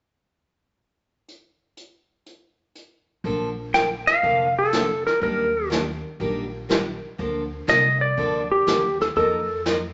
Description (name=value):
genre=country, western swing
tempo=122 BPM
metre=4/4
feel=swing 68% on 8ths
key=Bb major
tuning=A4 = 440 Hz
part: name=vintage brush drum kit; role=drums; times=1.3-9.9 s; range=brushed snare drum, hi-hat, kick drum, snare drum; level=-30 LUFS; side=equal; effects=none
part: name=picked steel-string acoustic guitar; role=accompaniment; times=3.2-9.8 s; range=D3 to Bb4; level=-29 LUFS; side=equal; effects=none
part: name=upright bass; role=bass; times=3.2-9.9 s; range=F1 to F2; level=-35 LUFS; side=equal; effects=none
part: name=clean lap steel guitar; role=melody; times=3.7-9.6 s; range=G4 to G5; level=-22 LUFS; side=equal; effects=none
room=moderate large studio reverb, RT60 1.1 s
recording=nothing above 7.9 kHz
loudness=-22 LUFS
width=mono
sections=1.3-3.2 A section; 3.2-9.9 B section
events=none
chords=1.3 N.C.; 3.2 Bbmaj7; 5.2 Ebmaj7; 7.2 Bbmaj7; 9.2 F7sus4